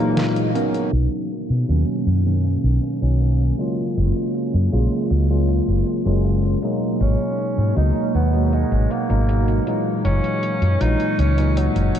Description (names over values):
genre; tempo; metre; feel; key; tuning
vaporwave; 79 BPM; 4/4; straight; F# major; A4 = 440 Hz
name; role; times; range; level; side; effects
warm tenor saxophone; melody; 0.0-0.6, 7.0-12.0 s; F#3 to D#4; -27 LUFS; equal; tape echo
tine electric piano; accompaniment; 0.0-12.0 s; A#2 to A#4; -21 LUFS; equal; lush chorus, tape echo
detuned 8-bit digital drum machine; drums; 0.2-12.0 s; hi-hat, snare drum; -31 LUFS; equal; vintage 12-bit sampler grit, small room reverb
woody fretless electric bass; bass; 0.9-11.9 s; F#1 to B2; -18 LUFS; equal; analog chorus
room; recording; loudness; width
moderate huge ambient reverb, RT60 8.3 s; dreamy mix soaked in reverb, cassette tape, low-pass filter; -17 LUFS; side -10 dB against mid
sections
0.9-12.0 A section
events
break 0.0-0.9; filter sweep 0.9-12.0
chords
0.0 F#13; 0.9 Bmaj9; 4.0 F#maj9; 6.6 G#m9; 10.0 F#13